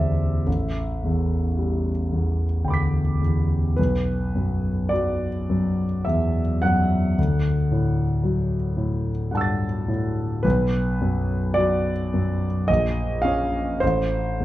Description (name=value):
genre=classical, impressionist solo piano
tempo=54 BPM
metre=3/4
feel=uneven beats, rubato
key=unclear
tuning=A4 = 441 Hz
part: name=warm concert grand piano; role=solo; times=0.0-14.4 s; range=A1 to B6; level=-20 LUFS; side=equal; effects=none
room=moderate large studio reverb, RT60 1.1 s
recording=dark, warm production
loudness=-20 LUFS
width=side -15 dB against mid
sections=0.0-14.4 A section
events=none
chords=0.5 Em7/A; 3.8 Bm; 7.2 Dadd9; 10.4 Bm; 12.7 Bbm; 13.8 Am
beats=| 0.47 1.58 2.66 | 3.78 4.92 6.06 | 7.18 8.24 9.33 | 10.45 11.56 12.68 | 13.82